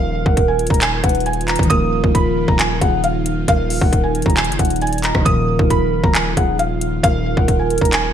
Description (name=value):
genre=hip hop, trap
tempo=135 BPM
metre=4/4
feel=half-time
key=unclear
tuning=A4 = 440 Hz
part: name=felt-muted upright piano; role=melody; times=0.0-8.1 s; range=F5 to Eb6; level=-21 LUFS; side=equal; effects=ping-pong delay
part: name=hollow clarinet-like synth lead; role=second line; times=0.0-8.1 s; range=Ab4 to D5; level=-24 LUFS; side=right 4 dB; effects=chorus, phaser, ping-pong delay
part: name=soft electric-piano-like synth keys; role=accompaniment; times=0.0-8.1 s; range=Bb2 to F4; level=-24 LUFS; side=left 2 dB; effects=chorus
part: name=airy breathy pad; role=sustained chords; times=0.0-8.1 s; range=Eb3 to F4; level=-25 LUFS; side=right 2 dB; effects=chorus
part: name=distorted 808-style bass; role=bass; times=0.0-8.1 s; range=Eb1 to Gb1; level=-22 LUFS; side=equal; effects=distortion
part: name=trap drum kit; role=drums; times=0.3-8.0 s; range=handclaps, hi-hat, kick drum, rim click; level=-17 LUFS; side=equal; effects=gated reverb
room=light reverb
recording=bright 1980s-style digital production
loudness=-14 LUFS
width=side -9 dB against mid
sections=0.0-8.1 A section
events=none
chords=0.0 Ebsus2